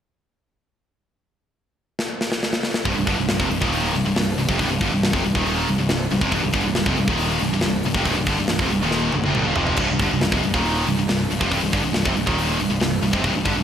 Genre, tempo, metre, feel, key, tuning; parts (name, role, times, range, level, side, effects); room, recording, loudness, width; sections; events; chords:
heavy metal; 138 BPM; 4/4; straight; C minor; A4 = 440 Hz
tight metal drum kit; drums; 2.0-13.6 s; crash cymbal, hi-hat, kick drum, snare drum, toms; -24 LUFS; equal
distorted electric guitar; riff; 2.9-13.6 s; C2 to F3; -26 LUFS; right 2 dB; distortion
scooped high-gain guitar; riff; 2.9-13.6 s; C2 to F3; -23 LUFS; left 6 dB; distortion
tight distorted guitar; riff; 2.9-13.6 s; C2 to F3; -26 LUFS; right 8 dB; distortion
fuzz picked electric bass; bass; 2.9-13.6 s; C1 to G1; -26 LUFS; equal; overdrive
moderate scoring stage reverb, RT60 1.8 s, small room reverb; big arena sound; -18 LUFS; side -9 dB against mid
1.1-2.9 A section; 2.9-13.6 B section
drum fill 2.0-2.9, 8.9-9.8
1.1 N.C.; 2.9 Cm